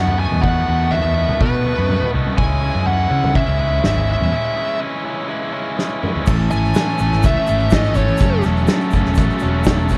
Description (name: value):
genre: indie rock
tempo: 124 BPM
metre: 4/4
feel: straight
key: unclear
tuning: A4 = 440 Hz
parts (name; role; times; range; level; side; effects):
- smooth overdriven lead guitar; melody; 0.0-8.4 s; B4 to G#5; -23 LUFS; equal; slapback echo
- overdriven electric guitar; riff; 0.0-10.0 s; F#2 to A4; -26 LUFS; equal; none
- fingered electric bass; bass; 0.0-10.0 s; E1 to C#3; -21 LUFS; equal; none
- loose indie drum kit; drums; 0.1-10.0 s; crash cymbal, hi-hat, kick drum, snare drum, toms; -22 LUFS; equal; none
- thick fuzz guitar; riff; 6.3-10.0 s; A2 to F#4; -24 LUFS; equal; distortion, ensemble chorus, slapback echo
- egg shaker; percussion; 6.3-10.0 s; none; -43 LUFS; equal; none
room: little or no reverb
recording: none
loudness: -17 LUFS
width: mono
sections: 0.0-6.3 A section; 6.3-10.0 B section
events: break 4.3-6.3; drum fill 5.8-6.3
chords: 0.0 B7sus4; 2.4 C#m; 6.3 Amaj7; 8.2 F#m7